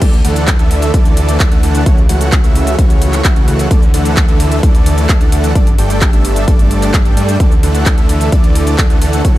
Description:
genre	EDM, festival progressive house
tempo	130 BPM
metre	4/4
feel	straight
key	D major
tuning	A4 = 440 Hz
part	big supersaw lead	riff	0.0-9.4 s	E3 to G5	-17 LUFS	right 1 dB	sidechain pumping, digital delay
part	wide detuned saw bass	bass	0.0-9.4 s	G1 to G2	-15 LUFS	equal	chorus, sidechain pumping
part	big-room dance drum kit	drums	0.0-9.3 s	crash cymbal, handclaps, hi-hat, shaker	-20 LUFS	equal	none
part	electronic kick drum	drums	0.0-9.3 s	none	-10 LUFS	equal	none
room	little or no reverb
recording	none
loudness	-9 LUFS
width	side -15 dB against mid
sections	0.0-9.4 A section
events	none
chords	0.0 Dsus2; 1.9 A6/C#; 3.7 Dsus2; 5.6 Gsus2; 7.4 Dsus2

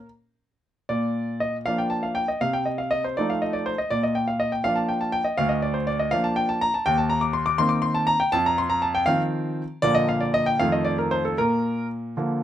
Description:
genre	classical-period piano sonatina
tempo	80 BPM (dotted quarters)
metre	6/8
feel	rubato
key	Bb major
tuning	A4 = 438 Hz
part	clear grand piano	solo	0.0-12.4 s	D2 to D6	-21 LUFS	equal	none
room	light reverb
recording	none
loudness	-21 LUFS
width	side -11 dB against mid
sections	0.9-12.4 A section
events	none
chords	0.0 N.C.; 0.9 Bb; 2.4 F7/C; 3.9 Bb; 5.4 Bb/D; 6.9 Cm7/Eb; 8.3 F5; 9.8 Bb; 10.6 F7; 11.4 Bb

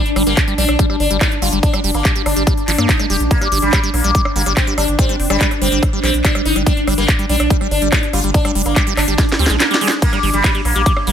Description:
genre	psychedelic trance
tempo	143 BPM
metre	4/4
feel	straight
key	G minor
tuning	A4 = 440 Hz
part	sitar	melody	0.0-11.1 s	G3 to G4	-20 LUFS	left 1 dB	phaser, sidechain pumping, tape echo
part	swarming drone	sustained chords	0.0-11.1 s	Bb3 to D4	-23 LUFS	right 2 dB	built-in reverb, sidechain pumping
part	drum and bass drum kit	drums	0.1-11.1 s	crash cymbal, handclaps, hi-hat, ride cymbal, rim click, snare drum	-20 LUFS	equal	none
part	liquid acid bass	riff	0.2-11.1 s	F3 to Bb3	-22 LUFS	moving between left 3 dB and right 4 dB	phaser, auto-pan, sidechain pumping, digital delay
part	round analog bass	bass	0.2-11.1 s	F1 to G2	-19 LUFS	equal	none
part	electronic kick drum	drums	0.4-10.9 s	none	-16 LUFS	equal	none
part	resonant blip pluck	second line	5.1-5.5 s	C4 to D4	-30 LUFS	left 5 dB	chorus, sidechain pumping, high-pass filter, ping-pong delay
room	digital ambience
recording	none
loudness	-13 LUFS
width	side -9 dB against mid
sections	0.0-11.1 A section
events	drum fill 9.2-10.0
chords	0.0 G5

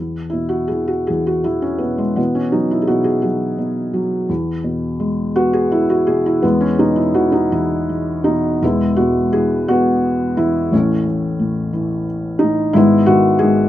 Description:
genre	classical, lyrical solo piano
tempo	52-60 BPM (dotted quarters)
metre	6/8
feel	rubato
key	E major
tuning	A4 = 440 Hz
part	felt-muted upright piano	solo	0.0-13.7 s	E1 to G#4	-14 LUFS	equal	none
room	light reverb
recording	none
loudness	-15 LUFS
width	side -13 dB against mid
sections	0.0-8.6 A section; 8.6-13.7 B section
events	none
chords	0.0 E5; 2.2 Bsus4; 4.3 E; 10.7 A; 12.8 G#m

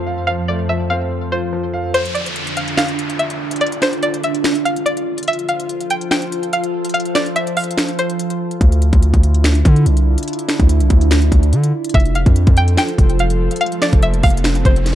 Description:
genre	hip hop, trap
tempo	144 BPM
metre	4/4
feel	half-time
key	D minor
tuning	A4 = 440 Hz
part	string-like resonator pluck	melody	0.0-8.6, 11.9-14.9 s	C5 to G5	-20 LUFS	equal	chorus, low-pass filter
part	clear concert grand piano	accompaniment	0.0-2.0 s	F3 to F5	-23 LUFS	equal	low-pass filter
part	warbly tape-like pad	sustained chords	0.0-14.9 s	F2 to C5	-22 LUFS	right 1 dB	chorus, built-in reverb, phaser
part	trap drum kit	drums	1.9-14.9 s	finger snaps, hi-hat, kick drum, snare drum	-16 LUFS	equal	none
part	downlifter and riser	sound effects	1.9-5.3, 13.4-14.9 s	none	-28 LUFS	right 1 dB	none
part	hard-hitting 808-style bass	bass	8.6-14.9 s	F1 to D3	-14 LUFS	equal	none
room	digital ambience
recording	dark, warm production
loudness	-14 LUFS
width	side -12 dB against mid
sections	0.0-1.9 A section; 1.9-14.9 B section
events	kick muted 1.9-8.6; riser 13.4-14.9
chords	0.0 F; 1.9 Dmadd9; 5.3 F; 8.6 Dmadd9; 11.9 F

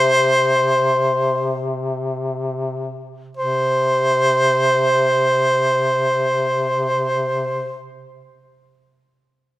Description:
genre	caucasian folk, Caucasian lament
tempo	free time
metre	none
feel	none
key	unclear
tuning	A4 = 440 Hz
part	clear harmonica	melody	0.0-7.8 s	C5	-16 LUFS	equal	none
part	mellow duduk	drone	0.0-7.8 s	C3	-24 LUFS	left 1 dB	none
room	light reverb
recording	none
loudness	-16 LUFS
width	side -16 dB against mid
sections	0.0-3.4 A section; 3.4-7.3 B section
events	slowing down 0.0-3.4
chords	none

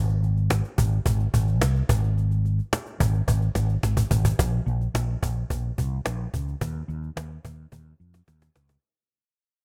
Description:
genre	1980s-style pop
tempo	108 BPM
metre	4/4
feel	straight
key	Ab major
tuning	A4 = 441 Hz
part	mellow fretless electric bass	bass	0.0-8.8 s	Ab1 to F2	-26 LUFS	equal	none
part	cajon	drums	0.1-8.8 s	none	-29 LUFS	equal	none
room	light reverb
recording	bright 1980s-style digital production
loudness	-25 LUFS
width	mono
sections	0.0-4.4 A section; 4.4-8.8 B section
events	drum fill 3.3-4.4, 7.7-8.8; fade-out 4.4-8.8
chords	none

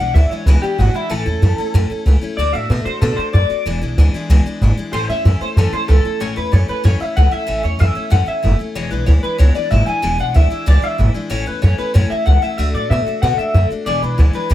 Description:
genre	rock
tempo	188 BPM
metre	4/4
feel	straight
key	A major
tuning	A4 = 440 Hz
part	electric guitar through a small old amp	melody	0.0-14.5 s	E4 to G#5	-20 LUFS	left 1 dB	analog chorus, tape echo
part	picked steel-string acoustic guitar	accompaniment	0.0-14.5 s	E2 to F#4	-24 LUFS	left 4 dB	none
part	upright bass	bass	0.0-14.5 s	E1 to B2	-13 LUFS	equal	none
room	little or no reverb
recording	none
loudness	-14 LUFS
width	side -13 dB against mid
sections	0.0-6.2 A section; 6.2-14.5 B section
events	clean electric guitar solo 0.0-6.2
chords	0.0 E7; 1.1 A; 2.4 D; 3.7 E7; 4.9 A; 8.8 E7; 11.3 A; 12.6 D; 13.9 E7

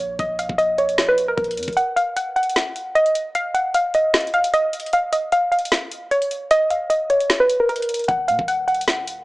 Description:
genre	hip hop, trap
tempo	152 BPM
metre	4/4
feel	half-time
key	Eb minor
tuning	A4 = 444 Hz
part	clean 808-style bass	bass	0.0-1.8, 8.1-9.2 s	Eb1 to Bb2	-37 LUFS	equal	none
part	soft round pluck	melody	0.2-9.2 s	Bb4 to Gb5	-18 LUFS	equal	chorus
part	trap drum kit	drums	0.2-9.2 s	hi-hat, kick drum, snare drum	-23 LUFS	equal	none
room	light reverb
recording	small speaker sound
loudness	-17 LUFS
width	side -20 dB against mid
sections	0.0-9.2 A section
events	kick muted 1.8-8.1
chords	0.0 Bb5; 1.8 N.C.; 8.1 Ebm

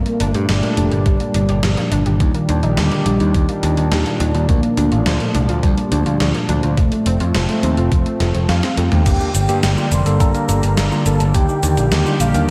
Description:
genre	synthwave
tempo	105 BPM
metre	4/4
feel	straight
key	G minor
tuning	A4 = 440 Hz
part	unison lead	melody	0.0-12.5 s	D3 to C6	-26 LUFS	equal	tape echo
part	chorused pulse-width pad	sustained chords	0.0-12.5 s	Bb2 to G4	-24 LUFS	equal	sidechain pumping
part	modern bright picked electric bass	bass	0.0-12.5 s	F1 to G2	-20 LUFS	equal	sidechain pumping
part	analog pluck	arpeggios	0.1-9.0 s	F3 to A4	-28 LUFS	equal	chorus, analog delay
part	gated 80s digital drum machine	drums	0.1-12.5 s	cabasa, crash cymbal, hi-hat, snare drum, toms	-26 LUFS	equal	gated reverb, gated reverb snare
part	electronic kick drum	drums	1.1-11.5 s	none	-19 LUFS	equal	none
part	bright tine electric piano	stabs	9.1-12.5 s	Bb3 to Bb4	-26 LUFS	equal	analog delay
room	moderate lush hall reverb, RT60 2.0 s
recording	dreamy mix soaked in reverb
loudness	-17 LUFS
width	mono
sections	0.0-9.1 A section; 9.1-12.5 B section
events	drum fill 8.2-9.1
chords	0.0 Gm; 2.2 Ebmaj7; 4.5 Bb; 6.8 F; 9.1 Gm; 11.3 Ebmaj7

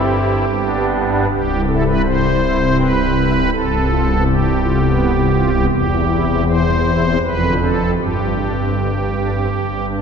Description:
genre	classical, chorale-style piece for pipe organ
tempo	81 BPM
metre	3/4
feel	uneven beats, rubato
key	C major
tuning	A4 = 440 Hz
part	pipe organ, strings celeste	solo	0.0-10.0 s	C1 to C5	-14 LUFS	equal	none
room	wet cathedral reverb, RT60 4.4 s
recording	heard from further back in the room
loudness	-14 LUFS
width	side -6 dB against mid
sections	0.0-1.3 A section; 1.3-10.0 B section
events	none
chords	0.5 G; 1.3 C; 3.5 G7/C; 5.7 C/E; 7.2 Dm7/F; 8.0 Gsus4; 9.5 G5

